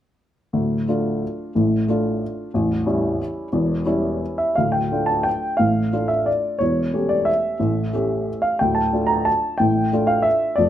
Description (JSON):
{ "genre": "classical, piano waltz", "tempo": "160-193 BPM", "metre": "3/4", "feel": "rubato", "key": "D minor", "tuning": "A4 = 439 Hz", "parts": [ { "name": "warm baby grand piano", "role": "solo", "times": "0.5-10.7 s", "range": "A0 to Bb5", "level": "-18 LUFS", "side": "equal", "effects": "none" } ], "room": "moderate large studio reverb, RT60 0.8 s", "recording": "none", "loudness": "-18 LUFS", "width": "side -11 dB against mid", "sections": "0.5-4.6 A section; 4.6-10.7 B section", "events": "none", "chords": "0.5 Dm; 2.5 A7; 4.6 Dm; 6.6 A7/E; 8.6 Dm" }